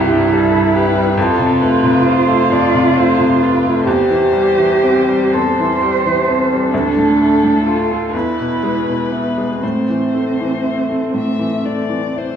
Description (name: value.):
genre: classical, slow romantic movement for piano trio.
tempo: 38-47 BPM (dotted quarters).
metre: 6/8.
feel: rubato.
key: A minor.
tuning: A4 = 440 Hz.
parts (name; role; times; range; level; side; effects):
muted violin; melody; 0.0-12.4 s; G4 to E5; -22 LUFS; left 6 dB; none.
muted cello; second line; 0.0-12.1 s; B3 to C5; -16 LUFS; right 4 dB; none.
bright baby grand piano; accompaniment; 0.0-12.4 s; C2 to G4; -16 LUFS; left 2 dB; none.
room: wet recital hall reverb, RT60 1.4 s.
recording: heard from further back in the room.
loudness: -12 LUFS.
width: side -8 dB against mid.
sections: 0.0-12.4 A section.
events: none.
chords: 0.0 C; 1.2 F; 3.9 C/E; 6.7 Dm; 8.1 E; 9.6 Am.